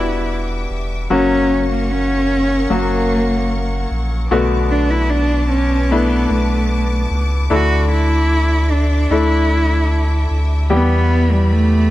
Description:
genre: pop ballad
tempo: 75 BPM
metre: 4/4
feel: straight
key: B minor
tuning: A4 = 437 Hz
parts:
  - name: warm cello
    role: melody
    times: 0.0-11.9 s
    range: G3 to F#4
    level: -19 LUFS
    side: right 1 dB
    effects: none
  - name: bright concert grand piano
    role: accompaniment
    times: 0.0-11.9 s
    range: B2 to A4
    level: -20 LUFS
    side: left 3 dB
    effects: none
  - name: clear studio string section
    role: sustained chords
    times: 0.0-11.9 s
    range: G3 to D6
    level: -28 LUFS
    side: left 1 dB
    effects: none
  - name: saturated sub bass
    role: bass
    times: 0.0-11.9 s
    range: E1 to E2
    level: -17 LUFS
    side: equal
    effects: none
room: light reverb, studio reverb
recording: dark, warm production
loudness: -14 LUFS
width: side -15 dB against mid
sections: 0.0-11.9 A section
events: none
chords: 0.0 Em7; 1.1 F#; 4.3 Bm7; 7.5 Dsus2; 10.7 Em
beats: 0.31 | 1.11 1.91 2.71 3.51 | 4.31 5.11 5.91 6.71 | 7.51 8.31 9.11 9.91 | 10.71 11.51

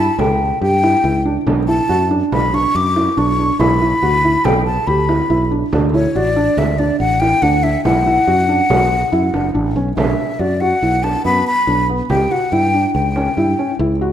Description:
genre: contemporary instrumental, chamber music in an uneven meter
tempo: 141 BPM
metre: 5/4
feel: straight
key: B minor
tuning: A4 = 440 Hz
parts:
  - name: breathy mellow silver concert flute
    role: melody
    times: 0.0-13.8 s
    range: C#5 to D6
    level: -17 LUFS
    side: left 2 dB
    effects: none
  - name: felt-muted upright piano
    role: arpeggios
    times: 0.0-14.1 s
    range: B3 to A4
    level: -18 LUFS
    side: right 1 dB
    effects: none
  - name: fretless electric bass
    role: bass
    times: 0.0-14.1 s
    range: F#1 to G2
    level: -19 LUFS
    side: equal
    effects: none
  - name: frame drum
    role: percussion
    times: 0.2-13.4 s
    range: none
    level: -25 LUFS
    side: right 4 dB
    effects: none
room: moderate concert hall reverb, RT60 2.1 s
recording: minimal, uncompressed stereo recording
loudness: -13 LUFS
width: side -10 dB against mid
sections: 0.0-10.0 A section; 10.0-14.1 B section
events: none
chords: 0.0 C#dim; 1.5 Bmadd9; 3.6 G6/B (rootless); 5.7 Dadd9; 7.9 Bm; 12.1 C#dim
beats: 0.19 0.61 1.04 | 1.47 1.89 2.32 2.75 3.17 | 3.60 4.02 4.45 4.88 5.30 | 5.73 6.15 6.58 7.00 7.43 | 7.85 8.28 8.70 9.13 9.55 | 9.98 10.40 10.82 11.25 11.68 | 12.10 12.52 12.95 13.37 13.80

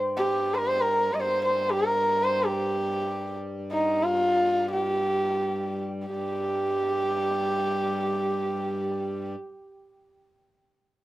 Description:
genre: indian classical, Hindustani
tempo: free time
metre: none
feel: none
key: G raga malkauns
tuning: A4 = 440 Hz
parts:
  - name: pedal harmonium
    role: drone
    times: 0.0-9.4 s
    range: G2 to G3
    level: -33 LUFS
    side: left 1 dB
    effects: none
  - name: dark sarangi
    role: melody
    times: 0.2-9.3 s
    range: Eb4 to Eb5+24c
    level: -25 LUFS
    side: equal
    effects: none
room: light reverb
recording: none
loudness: -24 LUFS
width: side -16 dB against mid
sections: 0.0-6.1 A section; 6.1-8.6 B section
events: none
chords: none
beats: free time

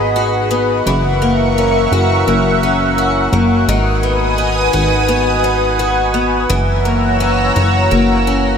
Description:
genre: dream pop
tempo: 85 BPM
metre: 4/4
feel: straight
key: unclear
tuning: A4 = 441 Hz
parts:
  - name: lush unison pad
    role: sustained chords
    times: 0.0-8.6 s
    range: G#4 to E6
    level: -16 LUFS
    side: right 1 dB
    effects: chorus, phaser, shimmer reverb
  - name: picked twelve-string acoustic guitar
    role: arpeggios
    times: 0.0-8.6 s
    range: D#3 to F#4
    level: -16 LUFS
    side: left 2 dB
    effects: analog chorus, tape echo, shimmer reverb
  - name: plucky analog bass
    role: bass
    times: 0.0-8.6 s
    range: F#1 to G#1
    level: -17 LUFS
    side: equal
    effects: none
room: moderate huge ambient reverb, RT60 7.7 s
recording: none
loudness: -12 LUFS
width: side -7 dB against mid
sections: 0.0-8.6 A section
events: none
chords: 0.0 G#m7; 0.9 F#7; 3.7 G#m7; 6.5 F#7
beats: 0.15 | 0.86 1.56 2.27 2.98 | 3.68 4.39 5.09 5.80 | 6.51 7.21 7.92

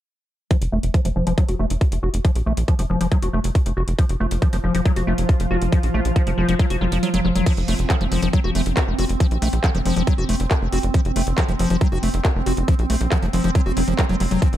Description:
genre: psychedelic trance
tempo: 138 BPM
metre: 4/4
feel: straight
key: F major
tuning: A4 = 440 Hz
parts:
  - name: liquid acid bass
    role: riff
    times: 0.5-14.5 s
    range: F3 to Gb4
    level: -24 LUFS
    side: moving between left 5 dB and right 1 dB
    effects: chorus, auto-pan, sidechain pumping, ping-pong delay
  - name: electronic kick drum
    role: drums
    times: 0.5-14.5 s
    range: none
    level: -17 LUFS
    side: equal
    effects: none
  - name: techno drum kit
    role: drums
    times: 0.5-14.6 s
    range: crash cymbal, handclaps, hi-hat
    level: -29 LUFS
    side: equal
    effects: none
  - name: tight sequencer bass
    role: bass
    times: 0.6-14.6 s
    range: F1 to Bb1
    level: -22 LUFS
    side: equal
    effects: none
  - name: pulsing gated texture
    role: sustained chords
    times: 4.2-14.6 s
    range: F3 to F4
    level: -26 LUFS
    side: right 2 dB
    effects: chorus, built-in reverb, sidechain pumping
room: little or no reverb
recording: dark, warm production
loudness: -18 LUFS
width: side -12 dB against mid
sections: 0.5-7.5 A section; 7.5-14.6 B section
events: filter sweep on acid bass 0.5-7.5; kick drops out 7.0-7.5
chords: 0.5 N.C.; 7.5 F5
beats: | 0.51 0.94 1.38 1.81 | 2.25 2.68 3.12 3.55 | 3.99 4.42 4.86 5.29 | 5.72 6.16 6.59 7.03 | 7.46 7.90 8.33 8.77 | 9.20 9.64 10.07 10.51 | 10.94 11.38 11.81 12.25 | 12.68 13.12 13.55 13.99 | 14.42

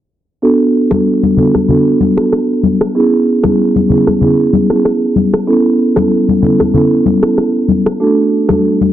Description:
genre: afrobeats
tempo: 95 BPM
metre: 4/4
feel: swing 55% on 16ths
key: B dorian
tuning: A4 = 440 Hz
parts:
  - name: marimba with medium mallets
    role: accompaniment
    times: 0.4-8.6 s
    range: A3 to A4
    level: -11 LUFS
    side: right 2 dB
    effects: none
  - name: electronic rim click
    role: drums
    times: 0.9-8.6 s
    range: none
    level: -18 LUFS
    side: left 1 dB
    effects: none
  - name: congas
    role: percussion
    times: 0.9-8.9 s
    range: none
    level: -14 LUFS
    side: left 4 dB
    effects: none
room: light reverb, studio reverb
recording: dense, heavily limited modern master, low-pass filter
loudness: -9 LUFS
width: side -12 dB against mid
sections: 0.4-8.9 A section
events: none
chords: 0.4 Bm7; 3.0 C#m7; 5.5 Aadd9; 8.0 D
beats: | 0.42 1.06 1.69 2.32 | 2.95 3.58 4.21 4.84 | 5.48 6.11 6.74 7.37 | 8.00 8.63

